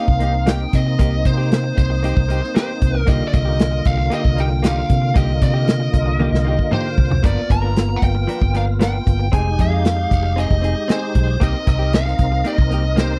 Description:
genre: straight-eighth soul blues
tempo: 115 BPM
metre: 4/4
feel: straight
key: C minor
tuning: A4 = 440 Hz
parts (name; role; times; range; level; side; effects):
- biting lead guitar; melody; 0.0-13.2 s; C5 to A#5; -27 LUFS; equal; overdrive, slapback echo
- tonewheel organ; accompaniment; 0.0-13.2 s; D3 to Bb4; -28 LUFS; equal; slow rotary speaker, overdrive, chorus vibrato
- direct-recorded clean electric guitar; stabs; 0.0-13.1 s; F3 to A#4; -30 LUFS; equal; subtle chorus
- vintage muted fingered electric bass; bass; 0.1-13.2 s; F1 to C3; -21 LUFS; equal; none
- warm soul drum kit; drums; 0.1-13.1 s; hi-hat, kick drum, snare drum, toms; -20 LUFS; equal; none
room: small room ambience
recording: none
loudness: -18 LUFS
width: mono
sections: 0.0-13.2 A section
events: drum fill 6.2-7.2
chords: 0.0 Cm7; 7.2 G7#9; 9.3 Fm7; 11.4 Cm7

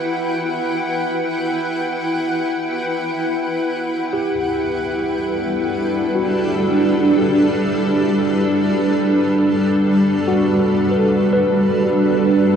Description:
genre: ambient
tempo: 59 BPM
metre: 4/4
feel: straight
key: unclear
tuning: A4 = 441 Hz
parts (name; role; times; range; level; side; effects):
- granular cloud pad; sustained chords; 0.0-12.6 s; G3 to G5; -16 LUFS; equal; built-in reverb, shimmer reverb
- tine electric piano; arpeggios; 4.1-12.6 s; F#4 to B4; -22 LUFS; left 1 dB; overdrive, analog chorus, diffuse ambient delay, shimmer reverb
room: wet huge ambient reverb, RT60 7.8 s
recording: dark, warm production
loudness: -16 LUFS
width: side -8 dB against mid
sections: 0.0-12.4 A section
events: none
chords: 0.0 Emadd9; 4.1 Gmaj7

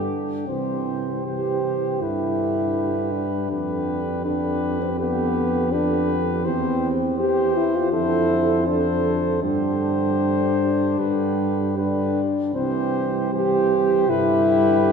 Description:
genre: classical, brass quintet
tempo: 80 BPM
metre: 4/4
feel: uneven beats, rubato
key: C major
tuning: A4 = 440 Hz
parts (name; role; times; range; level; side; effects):
- warm cornet; melody; 0.0-14.9 s; B4 to C5; -29 LUFS; left 6 dB; none
- mellow flugelhorn; second line; 0.0-14.9 s; G4 to A4; -29 LUFS; right 3 dB; none
- mellow French horn; accompaniment; 0.0-14.9 s; B3 to G4; -22 LUFS; left 1 dB; none
- warm euphonium; accompaniment; 0.0-14.9 s; D3 to E3; -30 LUFS; right 5 dB; none
- mellow tuba; bass; 0.0-14.9 s; C2 to G2; -26 LUFS; right 2 dB; none
room: wet cathedral reverb, RT60 4.6 s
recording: minimal, uncompressed stereo recording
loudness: -19 LUFS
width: side -6 dB against mid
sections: 0.5-14.9 A section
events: none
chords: 0.5 C; 2.0 G; 3.5 G7/F; 6.5 C/E; 7.9 Dm7/F; 9.4 Gsus4; 12.5 C; 14.1 G

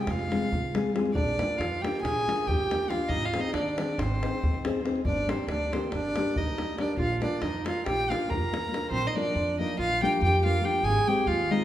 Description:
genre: balkan folk, Balkan wedding band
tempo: 278 BPM (eighths)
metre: 9/8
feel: straight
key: Bb mixolydian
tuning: A4 = 440 Hz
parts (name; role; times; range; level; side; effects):
- rich violin; melody; 0.0-11.6 s; C5 to Bb5; -30 LUFS; left 1 dB; none
- warm clarinet; second line; 0.0-11.6 s; C4 to Bb4; -32 LUFS; right 3 dB; none
- nylon-string guitar; accompaniment; 0.0-11.6 s; F3 to C5; -32 LUFS; left 3 dB; none
- upright bass; bass; 0.1-11.5 s; F1 to F2; -32 LUFS; right 1 dB; none
- davul; percussion; 0.1-8.8 s; none; -33 LUFS; left 1 dB; none
room: wet recital hall reverb, RT60 1.7 s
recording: recorded in a church or concert hall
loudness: -25 LUFS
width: side -12 dB against mid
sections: 0.0-8.9 A section; 8.9-11.6 B section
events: none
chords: 0.0 Fm; 1.1 Bb; 3.1 Ab; 5.0 Gm; 7.0 Bb; 10.8 Ab

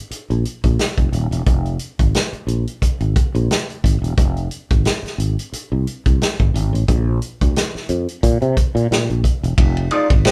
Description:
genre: funk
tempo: 89 BPM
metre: 4/4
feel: swing 56% on 16ths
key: F dorian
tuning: A4 = 440 Hz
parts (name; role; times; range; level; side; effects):
- sustaining fretless electric bass; bass; 0.1-10.2 s; Eb1 to C3; -22 LUFS; equal; none
- vintage drum kit; drums; 0.1-10.3 s; hi-hat, kick drum, ride cymbal, snare drum; -20 LUFS; equal; none
- vintage hollow-body jazz guitar; accompaniment; 9.9-10.3 s; Ab3 to D5; -20 LUFS; equal; wah
room: light reverb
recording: band playing live in one room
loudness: -19 LUFS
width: mono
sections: 0.0-9.6 A section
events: none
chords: 0.0 Fm; 6.9 N.C.; 9.6 Fm7

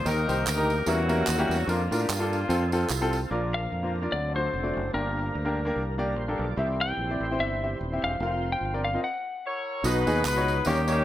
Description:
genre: uptempo gospel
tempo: 147 BPM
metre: 4/4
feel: swing 56% on 8ths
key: Bb major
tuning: A4 = 440 Hz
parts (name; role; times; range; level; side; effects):
- warm horn section; melody; 0.0-2.9, 9.4-11.0 s; Bb3 to Db5; -29 LUFS; left 2 dB; none
- clear concert grand piano; accompaniment; 0.0-11.0 s; G2 to F5; -29 LUFS; left 1 dB; none
- overdriven tonewheel organ; sustained chords; 0.0-11.0 s; D#3 to D5; -36 LUFS; right 2 dB; slow rotary speaker, chorus vibrato
- fingered electric bass; bass; 0.0-11.0 s; Eb1 to A2; -29 LUFS; right 1 dB; none
- tambourine and handclaps; percussion; 0.1-3.2, 9.8-11.0 s; none; -35 LUFS; right 5 dB; none
- dark French horn section; sustained chords; 3.3-9.0 s; D3 to F4; -40 LUFS; right 1 dB; none
- clean lap steel guitar; melody; 3.5-9.6 s; Bb4 to G5; -31 LUFS; left 2 dB; tape echo
room: light reverb, studio reverb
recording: none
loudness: -24 LUFS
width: side -13 dB against mid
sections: 0.0-3.3 A section; 3.3-9.8 B section; 9.8-11.0 A section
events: stop 9.0-9.8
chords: 0.1 Eb; 0.9 Edim7; 1.7 Bb/F; 2.5 F; 3.3 Bb; 4.1 D7; 4.9 Gm; 6.6 C; 8.2 Fsus4; 9.0 Gb7; 9.8 B

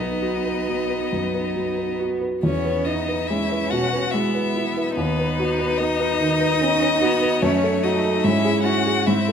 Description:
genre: classical, slow romantic movement for piano quartet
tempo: 66-74 BPM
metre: 3/4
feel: rubato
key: unclear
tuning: A4 = 440 Hz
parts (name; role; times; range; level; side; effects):
- clear violin; melody; 0.0-9.3 s; B4 to F#5; -25 LUFS; left 6 dB; none
- rich cello; second line; 0.0-9.3 s; B3 to F#4; -26 LUFS; right 6 dB; none
- warm violin; second line; 0.0-9.3 s; A3 to D#4; -28 LUFS; left 3 dB; none
- warm baby grand piano; accompaniment; 0.0-9.3 s; B1 to B4; -22 LUFS; equal; none
room: moderate recital hall reverb, RT60 1.7 s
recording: none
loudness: -19 LUFS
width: side -7 dB against mid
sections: 0.0-9.3 A section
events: none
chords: 0.0 B; 2.4 E; 5.0 B/D#; 7.4 D#dim/F#; 8.2 C#m/G#

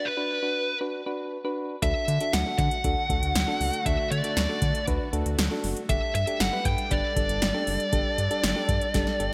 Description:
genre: synth-pop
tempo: 118 BPM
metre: 4/4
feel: straight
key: D major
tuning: A4 = 439 Hz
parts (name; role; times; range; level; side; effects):
- fuzz lead guitar; melody; 0.0-9.3 s; B4 to G5; -30 LUFS; equal; distortion, delay
- soft electric-piano-like synth keys; accompaniment; 0.0-9.3 s; D4 to B4; -35 LUFS; equal; chorus
- phased analog pad; sustained chords; 2.3-9.3 s; D3 to A4; -40 LUFS; equal; phaser, chorus
- round analog bass; bass; 1.8-9.3 s; F#1 to D3; -31 LUFS; equal; none
- electro analog drum machine; drums; 1.8-9.3 s; hi-hat, kick drum, snare drum; -30 LUFS; equal; overdrive, gated reverb
room: moderate lush hall reverb, RT60 2.2 s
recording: bright 1980s-style digital production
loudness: -26 LUFS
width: mono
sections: 0.0-9.3 A section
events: drum fill 8.9-9.3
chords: 0.0 Bm; 1.8 D; 5.9 Gsus2

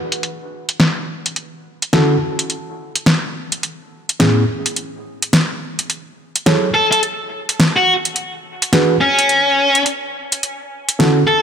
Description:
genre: glitch hop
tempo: 106 BPM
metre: 4/4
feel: swing 62% on 16ths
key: unclear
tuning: A4 = 438 Hz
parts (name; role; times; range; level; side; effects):
- pop drum kit; drums; 0.1-11.1 s; hi-hat, snare drum; -16 LUFS; equal; low-pass filter on hats, low-pass filter on snare, low-pass filter on cymbals
- tine electric piano; stabs; 1.9-11.2 s; A2 to C#5; -18 LUFS; right 1 dB; wide subtle chorus, dub echo
- high-gain lead guitar; melody; 6.7-11.4 s; C#4 to A4; -15 LUFS; left 1 dB; distortion, dub echo
room: moderate lush hall reverb, RT60 2.0 s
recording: none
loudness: -14 LUFS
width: side -8 dB against mid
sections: 0.0-11.4 A section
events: none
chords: 0.0 N.C.; 1.4 Dmaj7; 3.6 Amaj7; 5.9 F#m7; 8.2 E9; 10.4 Dmaj7

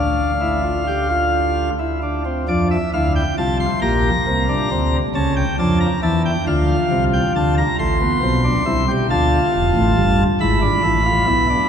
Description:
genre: classical, baroque-style 3-part fugue for pipe organ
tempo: 45 BPM (dotted quarters)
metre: 6/8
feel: straight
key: D minor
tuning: A4 = 441 Hz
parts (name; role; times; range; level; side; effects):
- chamber organ, principal chorus; solo; 0.0-11.7 s; F1 to C6; -15 LUFS; equal; none
room: wet cathedral reverb, RT60 6.2 s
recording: minimal, uncompressed stereo recording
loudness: -16 LUFS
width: side -8 dB against mid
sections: 0.0-2.5 A section; 2.5-11.7 B section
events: none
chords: 0.0 Dm; 3.8 Gm/Bb; 5.2 A/C#; 6.5 Dm; 7.8 Am; 9.1 Dm; 10.4 E/G#

